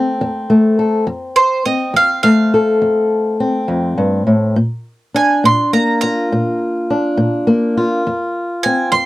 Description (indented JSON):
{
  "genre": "acoustic country blues, solo or duo",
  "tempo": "69 BPM (dotted quarters)",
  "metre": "12/8",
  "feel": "straight",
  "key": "F major",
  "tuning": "A4 = 439 Hz",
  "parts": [
    { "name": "fingerpicked old ladder-braced acoustic guitar", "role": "accompaniment", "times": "0.0-9.1 s", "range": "F2 to A4", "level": "-14 LUFS", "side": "left 1 dB", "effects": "none" },
    { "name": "bowl-back mandolin", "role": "melody", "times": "1.4-9.1 s", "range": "C5 to C6", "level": "-14 LUFS", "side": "right 2 dB", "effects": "none" }
  ],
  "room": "moderate booth ambience, RT60 0.2 s",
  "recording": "dry, close 1970s-style studio recording",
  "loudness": "-13 LUFS",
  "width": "side -17 dB against mid",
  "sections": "0.0-9.1 A section",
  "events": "mandolin solo 0.0-9.1",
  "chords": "0.0 F; 4.6 Bb; 8.1 F5",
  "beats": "0.20 | 1.07 1.95 2.82 3.69 | 4.57 5.44 6.31 7.18 | 8.05 8.93"
}